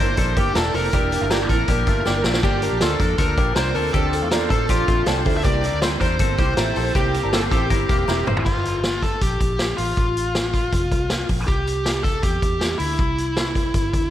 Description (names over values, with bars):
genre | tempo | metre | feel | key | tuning
jangly indie pop | 159 BPM | 4/4 | straight | unclear | A4 = 440 Hz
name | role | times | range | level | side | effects
high-gain lead guitar | melody | 0.0-14.1 s | E4 to E5 | -24 LUFS | left 1 dB | distortion, slapback echo
combo organ | accompaniment | 0.0-8.4 s | Bb3 to C5 | -29 LUFS | right 4 dB | slapback echo
picked twelve-string acoustic guitar | accompaniment | 0.0-8.5 s | G2 to Bb4 | -28 LUFS | right 8 dB | slapback echo
semi-hollow electric guitar | arpeggios | 0.0-8.5 s | A3 to C5 | -27 LUFS | left 7 dB | phaser, slapback echo
vintage muted fingered electric bass | bass | 0.0-14.1 s | E1 to A2 | -25 LUFS | equal | none
vintage drum kit | drums | 0.2-14.0 s | crash cymbal, hi-hat, kick drum, snare drum, splash cymbal, toms | -22 LUFS | equal | none
room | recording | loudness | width
light reverb, studio reverb | none | -18 LUFS | side -12 dB against mid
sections
0.0-8.5 A section; 8.5-14.1 B section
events
drum fill 2.1-2.4, 8.1-8.5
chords
0.0 Em7b5; 2.4 Gm7; 3.8 Dm7; 5.4 C7; 8.5 Gm7; 9.8 F/A; 11.5 C